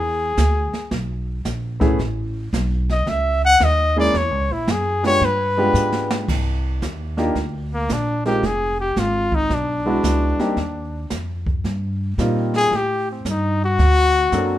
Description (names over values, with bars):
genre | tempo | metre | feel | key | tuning
jazz, small-group swing and bop | 112 BPM | 4/4 | swing 67% on 8ths | C minor from 6.3 s | A4 = 440 Hz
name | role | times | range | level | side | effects
warm trumpet | melody | 0.0-14.6 s | Bb3 to F#5 | -19 LUFS | left 2 dB | none
upright bass | bass | 0.0-14.6 s | F1 to Bb2 | -22 LUFS | equal | none
jazz brush drum kit | drums | 0.4-14.6 s | brushed snare drum, crash cymbal, hi-hat, kick drum, snare drum | -25 LUFS | right 1 dB | none
warm concert grand piano | accompaniment | 1.8-14.6 s | F#3 to Bb4 | -22 LUFS | equal | none
room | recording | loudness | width
light reverb | minimal, uncompressed stereo recording | -18 LUFS | side -13 dB against mid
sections
0.0-6.3 A section; 6.3-14.6 B section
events
drum fill 5.8-6.3; trumpet solo 6.3-14.6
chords
0.0 E7; 2.0 Amaj9; 4.1 A#m7b5; 5.2 G7b9; 6.3 Cm11; 8.4 Fm; 9.5 E9; 10.6 Eb69; 12.7 A7(b5, no3); 13.8 D7b13